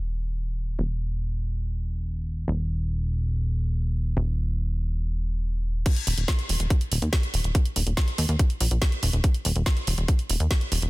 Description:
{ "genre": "psychedelic trance", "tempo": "142 BPM", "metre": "4/4", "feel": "straight", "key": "unclear", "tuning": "A4 = 443 Hz", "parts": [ { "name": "plucky analog bass", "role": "bass", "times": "0.0-10.9 s", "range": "Eb1 to Eb2", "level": "-25 LUFS", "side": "equal", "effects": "tube saturation" }, { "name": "drum and bass drum kit", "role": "drums", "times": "5.9-10.9 s", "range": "crash cymbal, hi-hat, snare drum", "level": "-29 LUFS", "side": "right 1 dB", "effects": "low-pass filter on hats, low-pass filter on snare, low-pass filter on cymbals, low-pass filter on room" }, { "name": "electronic kick drum", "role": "drums", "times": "5.9-10.6 s", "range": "none", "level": "-22 LUFS", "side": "equal", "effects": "none" } ], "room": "little or no reverb", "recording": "dense, heavily limited modern master", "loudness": "-23 LUFS", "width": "side -20 dB against mid", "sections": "0.0-5.9 A section; 5.9-10.9 B section", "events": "filter sweep on drum 0.0-5.9; drop 5.9-10.9", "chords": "none" }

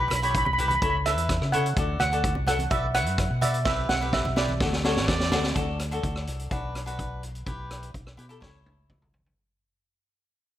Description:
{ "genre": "calypso", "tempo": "126 BPM", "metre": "4/4", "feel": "straight", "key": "D major", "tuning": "A4 = 440 Hz", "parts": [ { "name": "steel pan", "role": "melody", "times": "0.0-5.0 s", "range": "D5 to B5", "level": "-27 LUFS", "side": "right 2 dB", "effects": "analog delay" }, { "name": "cavaquinho", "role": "accompaniment", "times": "0.0-9.2 s", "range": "D4 to E5", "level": "-32 LUFS", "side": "left 3 dB", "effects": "none" }, { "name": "fingered electric bass", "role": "bass", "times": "0.0-9.3 s", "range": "A1 to C#3", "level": "-30 LUFS", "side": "equal", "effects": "none" }, { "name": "street-band drum kit", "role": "drums", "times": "0.1-9.4 s", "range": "hi-hat, kick drum, rim click, snare drum, toms", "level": "-29 LUFS", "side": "equal", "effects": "none" }, { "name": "congas", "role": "percussion", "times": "0.1-5.4 s", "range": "none", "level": "-36 LUFS", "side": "right 2 dB", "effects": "none" }, { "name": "clear trumpet", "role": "second line", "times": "4.8-5.5 s", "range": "C#5 to D5", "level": "-33 LUFS", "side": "right 3 dB", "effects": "none" } ], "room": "light reverb, small room ambience", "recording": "none", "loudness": "-23 LUFS", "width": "side -12 dB against mid", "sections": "0.0-5.6 A section; 5.6-9.4 B section", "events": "drum fill 3.7-5.6, 8.4-9.4; fade-out 5.6-9.4", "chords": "0.0 Em/B; 0.8 A/C#; 1.8 D; 2.7 Bm; 3.7 Em/B; 4.6 D; 6.5 Bm; 7.5 Em/B; 8.4 A/C#" }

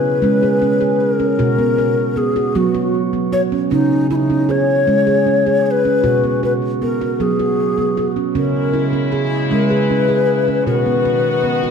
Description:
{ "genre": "world meditative, meditative tuned percussion", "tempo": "52 BPM (dotted quarters)", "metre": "6/8", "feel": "straight", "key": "C# dorian", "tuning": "A4 = 438 Hz", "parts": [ { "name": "breathy hollow low Native American-style wooden flute", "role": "melody", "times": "0.0-11.7 s", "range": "D#4 to C#5", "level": "-17 LUFS", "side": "left 4 dB", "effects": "none" }, { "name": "handpan", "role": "arpeggios", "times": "0.0-11.7 s", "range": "B2 to G#4", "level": "-17 LUFS", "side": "right 3 dB", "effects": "ping-pong delay" }, { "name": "rich chamber string section", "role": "sustained chords", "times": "8.4-11.7 s", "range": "C#3 to F#4", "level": "-23 LUFS", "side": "left 2 dB", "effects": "none" } ], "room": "wet echo chamber reverb, RT60 2.1 s", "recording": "none", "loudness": "-14 LUFS", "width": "side -6 dB against mid", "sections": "0.0-11.7 A section", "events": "none", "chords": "0.0 C#5; 1.4 B5; 3.7 C#5; 6.0 B5; 8.3 C#m; 10.7 B" }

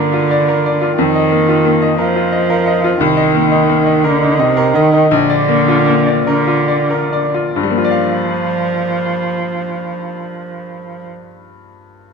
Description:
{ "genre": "neoclassical piano and strings", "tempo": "45-59 BPM (dotted quarters)", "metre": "6/8", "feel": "rubato", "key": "G minor", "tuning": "A4 = 440 Hz", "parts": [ { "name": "dark cello", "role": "second line", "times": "0.0-11.1 s", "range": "C3 to F3", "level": "-15 LUFS", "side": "right 3 dB", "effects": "none" }, { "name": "bright upright piano", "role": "accompaniment", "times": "0.0-12.1 s", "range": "Bb1 to F5", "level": "-15 LUFS", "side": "left 3 dB", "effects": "none" } ], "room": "moderate plate reverb, RT60 2.8 s", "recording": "minimal, uncompressed stereo recording", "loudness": "-11 LUFS", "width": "side -5 dB against mid", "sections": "0.0-7.6 A section; 7.6-12.1 B section", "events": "slowing down 2.0-7.6", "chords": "0.0 Gm7; 1.0 F7sus4; 3.0 Cm7; 5.1 Bb; 7.6 Gm7" }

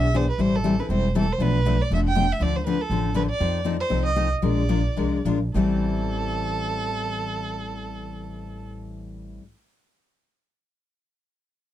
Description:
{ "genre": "acoustic string swing (jazz manouche)", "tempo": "202-240 BPM", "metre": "4/4", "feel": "swing 57% on 8ths", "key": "A minor", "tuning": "A4 = 436 Hz", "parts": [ { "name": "rich violin", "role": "melody", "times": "0.0-8.7 s", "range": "A4 to G5", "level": "-28 LUFS", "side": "right 4 dB", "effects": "none" }, { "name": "picked steel-string acoustic guitar", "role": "accompaniment", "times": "0.0-9.4 s", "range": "A2 to Bb4", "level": "-25 LUFS", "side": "left 5 dB", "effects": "none" }, { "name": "upright bass", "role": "bass", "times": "0.0-9.4 s", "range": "E1 to F2", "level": "-26 LUFS", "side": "right 1 dB", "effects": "none" } ], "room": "light reverb", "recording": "dark, warm production", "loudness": "-21 LUFS", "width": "side -12 dB against mid", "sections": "0.0-1.4 A section; 1.4-5.6 B section; 5.6-7.9 C section", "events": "slowing down 3.4-5.6", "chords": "0.4 Am7; 1.4 Bm7b5; 2.4 Dm7; 3.4 F7; 4.4 Bb9; 5.6 Am7" }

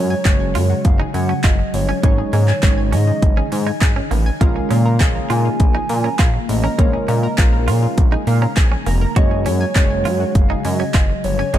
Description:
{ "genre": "dance-pop", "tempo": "101 BPM", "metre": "4/4", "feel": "straight", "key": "unclear", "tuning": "A4 = 439 Hz", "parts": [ { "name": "hollow clarinet-like synth lead", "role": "melody", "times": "0.0-11.6 s", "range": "Db5 to Ab5", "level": "-25 LUFS", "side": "right 1 dB", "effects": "chorus, ping-pong delay" }, { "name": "glassy digital keys", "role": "accompaniment", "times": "0.0-11.6 s", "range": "Ab3 to Bb5", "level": "-25 LUFS", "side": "right 2 dB", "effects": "chorus, sidechain pumping" }, { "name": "glassy FM pad", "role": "sustained chords", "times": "0.0-11.6 s", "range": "Db3 to Ab4", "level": "-26 LUFS", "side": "left 1 dB", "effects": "ensemble chorus, built-in reverb, sidechain pumping" }, { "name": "analog pluck", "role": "arpeggios", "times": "0.0-11.6 s", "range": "Ab3 to Ab5", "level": "-30 LUFS", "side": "left 2 dB", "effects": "chorus, sidechain pumping, ping-pong delay" }, { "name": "direct-recorded clean electric guitar", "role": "riff", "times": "0.0-11.6 s", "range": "Ab3 to Gb4", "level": "-28 LUFS", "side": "right 7 dB", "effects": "lush chorus" }, { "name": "chorused synth bass", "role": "bass", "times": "0.0-11.6 s", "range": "F1 to Bb2", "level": "-18 LUFS", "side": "equal", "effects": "sidechain pumping" }, { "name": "pop drum kit", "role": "drums", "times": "0.3-11.6 s", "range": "handclaps, hi-hat, kick drum", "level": "-17 LUFS", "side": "equal", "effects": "overdrive" }, { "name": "group handclap", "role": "percussion", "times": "0.3-11.1 s", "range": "none", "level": "-35 LUFS", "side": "right 8 dB", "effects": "none" } ], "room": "digital ambience", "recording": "dark, warm production", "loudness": "-14 LUFS", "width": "side -12 dB against mid", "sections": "0.0-11.6 A section", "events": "synth keys fill 8.0-9.2", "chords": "0.0 Gbsus2; 2.0 Absus4; 4.4 Bbm7; 9.2 Gbsus2" }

